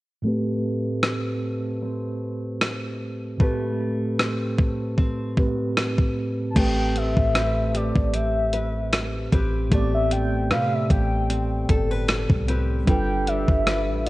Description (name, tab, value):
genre	contemporary R&B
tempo	76 BPM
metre	4/4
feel	swing 54% on 16ths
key	A minor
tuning	A4 = 438 Hz
part	mellow tine electric piano	accompaniment	0.2-14.1 s	A2 to D5	-26 LUFS	right 1 dB	medium stereo tremolo, low-pass filter
part	nylon-string guitar	arpeggios	0.2-14.1 s	G3 to B4	-31 LUFS	left 2 dB	low-pass filter, digital delay
part	gated 80s digital drum machine	drums	1.0-14.1 s	crash cymbal, hi-hat, kick drum, rim click	-23 LUFS	equal	overdrive, vintage 12-bit sampler grit
part	mellow horn-like synth lead	melody	6.5-14.1 s	D5 to A5	-27 LUFS	left 1 dB	chorus, phaser, digital delay
part	clean 808-style bass	bass	6.6-14.1 s	G1 to C3	-25 LUFS	equal	none
room	light reverb, digital ambience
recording	worn, warbling old tape, cassette tape, warbly pitch drift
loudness	-21 LUFS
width	side -18 dB against mid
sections	0.2-6.6 A section; 6.6-14.1 B section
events	filter sweep 0.2-6.6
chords	0.2 Am9; 12.9 G7